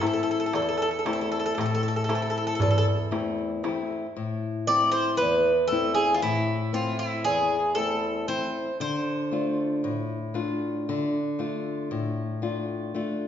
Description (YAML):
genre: greek folk, Greek bouzouki band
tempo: 116 BPM (eighths)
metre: 9/8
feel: straight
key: A minor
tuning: A4 = 440 Hz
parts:
  - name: Greek bouzouki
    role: melody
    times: 0.0-9.9 s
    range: E4 to D5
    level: -25 LUFS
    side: right 1 dB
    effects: none
  - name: nylon-string guitar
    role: accompaniment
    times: 0.0-13.3 s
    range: E2 to F4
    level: -27 LUFS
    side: left 3 dB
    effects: none
  - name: darbuka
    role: percussion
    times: 0.0-4.0 s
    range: none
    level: -30 LUFS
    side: right 2 dB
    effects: none
room: wet recital hall reverb, RT60 1.4 s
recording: recorded in a church or concert hall, nothing above 7.6 kHz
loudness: -24 LUFS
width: side -9 dB against mid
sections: 0.0-4.1 A section; 4.1-13.3 A section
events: none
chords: 0.0 Am; 8.8 Dm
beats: 0.01 0.52 1.04 1.56 2.08 2.60 3.11 3.63 | 4.15 4.67 5.18 5.70 6.22 6.74 7.25 7.77 8.29 | 8.80 9.32 9.84 10.35 10.87 11.39 11.90 12.42 12.94